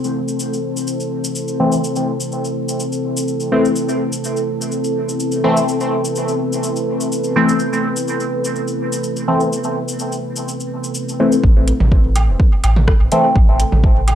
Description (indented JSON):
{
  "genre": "dub techno",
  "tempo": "125 BPM",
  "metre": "4/4",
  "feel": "straight",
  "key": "A minor",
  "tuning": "A4 = 441 Hz",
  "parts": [
    { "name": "deep dark ambient pad", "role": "sustained chords", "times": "0.0-14.2 s", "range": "C4 to C5", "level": "-21 LUFS", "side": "equal", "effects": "chorus, built-in reverb, sidechain pumping" },
    { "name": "cabasa", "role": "percussion", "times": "0.0-11.4 s", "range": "none", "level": "-28 LUFS", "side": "left 2 dB", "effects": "none" },
    { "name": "resonant sweep polysynth", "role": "stabs", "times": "1.6-13.3 s", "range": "E3 to C4", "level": "-19 LUFS", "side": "left 1 dB", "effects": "chorus, phaser, sidechain pumping, dub echo" },
    { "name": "soft dub sub bass", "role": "bass", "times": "11.4-14.2 s", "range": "E1 to A1", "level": "-15 LUFS", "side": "equal", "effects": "tube saturation, sidechain pumping" },
    { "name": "electronic kick drum", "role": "drums", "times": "11.4-13.9 s", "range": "none", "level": "-13 LUFS", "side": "equal", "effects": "overdrive, studio reverb" },
    { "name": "deep house drum kit", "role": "drums", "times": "11.7-14.2 s", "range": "hi-hat, rim click", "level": "-25 LUFS", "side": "left 1 dB", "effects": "overdrive, studio reverb, dub echo" },
    { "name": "electronic toms and woodblock", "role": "percussion", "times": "11.8-14.2 s", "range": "none", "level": "-23 LUFS", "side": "right 2 dB", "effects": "sidechain pumping on toms, studio reverb, sidechain pumping on perc, dub echo" }
  ],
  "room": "moderate digital room reverb, RT60 0.9 s",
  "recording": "dry, gritty hardware recording, cassette tape",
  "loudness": "-15 LUFS",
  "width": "side -10 dB against mid",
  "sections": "0.0-11.4 A section; 11.4-14.2 B section",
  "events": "none",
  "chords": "0.0 Am",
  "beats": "0.40 0.88 1.36 | 1.84 2.32 2.80 3.28 | 3.76 4.24 4.72 5.20 | 5.68 6.16 6.64 7.12 | 7.60 8.08 8.56 9.04 | 9.52 10.00 10.48 10.96 | 11.44 11.92 12.40 12.88 | 13.36 13.84"
}